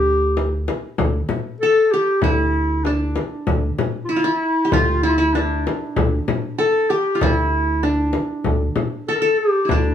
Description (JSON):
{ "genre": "Turkish makam ensemble", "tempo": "96 BPM", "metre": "4/4", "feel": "straight", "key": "D makam ussak", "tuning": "A4 = 440 Hz", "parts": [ { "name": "dark clarinet", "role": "melody", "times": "0.0-9.9 s", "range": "D4 to Bb4", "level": "-19 LUFS", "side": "left 1 dB", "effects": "none" }, { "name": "qanun", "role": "second line", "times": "0.0-9.9 s", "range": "D4 to A4", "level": "-23 LUFS", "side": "right 2 dB", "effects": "none" }, { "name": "plucky analog bass", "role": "bass", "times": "0.0-9.9 s", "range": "D2", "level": "-21 LUFS", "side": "equal", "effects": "none" }, { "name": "frame drum", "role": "percussion", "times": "0.4-9.8 s", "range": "none", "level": "-24 LUFS", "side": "left 4 dB", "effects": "none" } ], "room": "moderate studio reverb, RT60 0.7 s", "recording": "band playing live in one room, small room ambience", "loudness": "-17 LUFS", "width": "side -9 dB against mid", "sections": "0.0-9.9 A section", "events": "none", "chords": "none" }